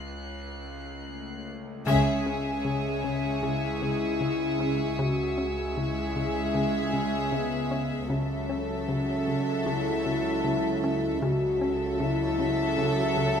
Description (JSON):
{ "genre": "cinematic, suspense film score", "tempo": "77 BPM", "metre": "4/4", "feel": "straight", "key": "C# minor", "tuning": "A4 = 440 Hz", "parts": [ { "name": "bowed-like drone", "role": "drone", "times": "0.0-13.4 s", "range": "C#2", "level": "-39 LUFS", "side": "equal", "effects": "built-in reverb" }, { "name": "warm studio violin section", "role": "texture", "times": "0.0-7.7 s", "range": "C#6 to B#6", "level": "-40 LUFS", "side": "right 2 dB", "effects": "none" }, { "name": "dark French horn section", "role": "sustained chords", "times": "1.1-13.2 s", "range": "A3 to F#4", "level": "-31 LUFS", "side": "left 4 dB", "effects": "none" }, { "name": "warm symphonic violin section", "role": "melody", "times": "1.9-13.4 s", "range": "E5", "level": "-34 LUFS", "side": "left 3 dB", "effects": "none" }, { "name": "warm symphonic violin section", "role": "second line", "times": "1.9-13.4 s", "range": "G#4 to A4", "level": "-34 LUFS", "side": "right 1 dB", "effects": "none" }, { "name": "dark symphonic viola section", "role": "accompaniment", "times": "1.9-13.4 s", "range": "F#3 to G#3", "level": "-35 LUFS", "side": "right 1 dB", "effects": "none" }, { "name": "plucky analog bass", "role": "riff", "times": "1.9-13.4 s", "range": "C#3 to C#4", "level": "-32 LUFS", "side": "left 2 dB", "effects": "none" }, { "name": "dark symphonic double bass section", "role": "bass", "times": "1.9-13.4 s", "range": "C#2", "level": "-36 LUFS", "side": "right 4 dB", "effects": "none" }, { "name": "warm symphonic cello section", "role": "bass", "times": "1.9-13.4 s", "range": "C#3", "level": "-35 LUFS", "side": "right 6 dB", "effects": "none" }, { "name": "triangle", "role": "percussion", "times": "1.9-3.4 s", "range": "none", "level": "-50 LUFS", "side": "left 3 dB", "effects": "none" } ], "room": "moderate scoring stage reverb, RT60 1.6 s", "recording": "minimal, uncompressed stereo recording", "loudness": "-25 LUFS", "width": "side -7 dB against mid", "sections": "0.0-1.9 A section; 1.9-13.4 B section", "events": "break 0.0-1.9; band accent 1.9-2.7", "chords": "0.0 F#m/C#; 1.9 C#m; 8.1 A6/C#" }